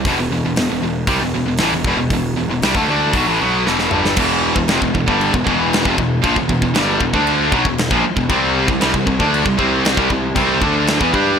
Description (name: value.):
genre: heavy metal.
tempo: 116 BPM.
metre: 4/4.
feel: straight.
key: E minor.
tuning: A4 = 441 Hz.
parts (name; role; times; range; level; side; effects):
distorted electric guitar; riff; 0.0-11.4 s; E2 to G4; -19 LUFS; left 10 dB; overdrive.
high-gain distorted guitar; riff; 0.0-11.4 s; E2 to G4; -19 LUFS; right 11 dB; distortion.
fuzz picked electric bass; bass; 0.0-11.4 s; E1 to G2; -23 LUFS; equal; overdrive.
big rock drum kit; drums; 0.1-11.3 s; crash cymbal, hi-hat, kick drum, snare drum, toms; -20 LUFS; equal; none.
fuzz guitar; riff; 4.2-11.4 s; E2 to G4; -24 LUFS; equal; distortion.
room: light reverb.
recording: none.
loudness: -14 LUFS.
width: side -7 dB against mid.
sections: 0.0-4.2 A section; 4.2-11.4 B section.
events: drum fill 3.7-4.2.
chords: 0.1 Em; 8.3 C5.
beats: | 0.06 0.57 1.09 1.60 | 2.12 2.63 3.15 3.67 | 4.18 4.70 5.21 5.72 | 6.24 6.76 7.27 7.79 | 8.30 8.82 9.33 9.85 | 10.36 10.88.